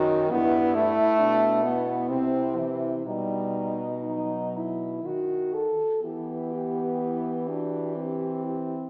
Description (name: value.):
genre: classical, lyrical piece for horn quartet.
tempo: 59-68 BPM.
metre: 3/4.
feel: rubato.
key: E minor.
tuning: A4 = 439 Hz.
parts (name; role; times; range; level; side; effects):
dark French horn; melody; 0.0-8.9 s; D4 to G4; -35 LUFS; equal; none.
mellow French horn; second line; 0.0-8.9 s; D#4 to A4; -33 LUFS; equal; none.
mellow French horn; accompaniment; 0.0-8.9 s; D#3 to D4; -29 LUFS; equal; none.
warm French horn; bass; 0.0-8.9 s; F#2 to E3; -35 LUFS; equal; none.
room: wet scoring stage reverb, RT60 1.5 s.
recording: none.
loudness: -27 LUFS.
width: mono.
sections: 0.0-8.9 A section.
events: none.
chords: 0.3 Em/G; 2.1 C; 3.1 B; 6.0 Em.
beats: | 0.30 1.19 2.10 | 3.07 4.06 5.03 | 6.03 7.02 7.97.